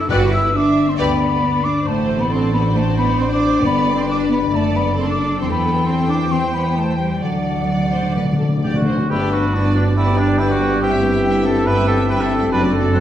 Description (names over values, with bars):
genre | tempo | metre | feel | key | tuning
classical | 126-143 BPM | 4/4 | straight | G major | A4 = 440 Hz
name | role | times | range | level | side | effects
silver concert flute | second line | 0.0-13.0 s | E5 to F#6 | -24 LUFS | left 1 dB | none
rich symphonic viola section | accompaniment | 0.0-13.0 s | F#3 to E5 | -28 LUFS | right 2 dB | none
concert harp | arpeggios | 0.0-13.0 s | F#2 to D5 | -24 LUFS | left 7 dB | none
clear symphonic cello section | bass | 0.0-13.0 s | F#2 to F#4 | -21 LUFS | right 2 dB | none
clear symphonic violin section | melody | 0.1-13.0 s | B4 to G5 | -29 LUFS | left 2 dB | none
rich studio violin section | second line | 0.1-13.0 s | B3 to D5 | -30 LUFS | left 2 dB | none
rich symphonic double bass section | bass | 0.1-13.0 s | F#1 to E2 | -23 LUFS | right 2 dB | none
timpani | percussion | 0.1-0.7, 3.6-4.2, 7.2-9.1 s | G2 to D3 | -24 LUFS | left 1 dB | none
bright trumpet | stabs | 8.6-13.0 s | D4 to B4 | -21 LUFS | right 2 dB | none
clear oboe | second line | 9.1-13.0 s | D5 to G5 | -30 LUFS | right 2 dB | none
warm clarinet | second line | 9.1-13.0 s | D4 to G4 | -25 LUFS | left 1 dB | none
dark bassoon | accompaniment | 9.1-13.0 s | A3 to D4 | -26 LUFS | equal | none
mellow French horn section | sustained chords | 9.1-13.0 s | B3 to E4 | -22 LUFS | left 3 dB | none
room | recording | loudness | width
wet recital hall reverb, RT60 1.4 s | dark, warm production | -15 LUFS | side -11 dB against mid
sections
0.0-9.1 A section; 9.1-13.0 B section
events
timpani fill 7.2-9.1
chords
0.1 G; 1.9 D7/A; 3.6 G; 4.5 D/F#; 5.4 C/E; 7.2 D; 9.1 G; 10.8 Am7/G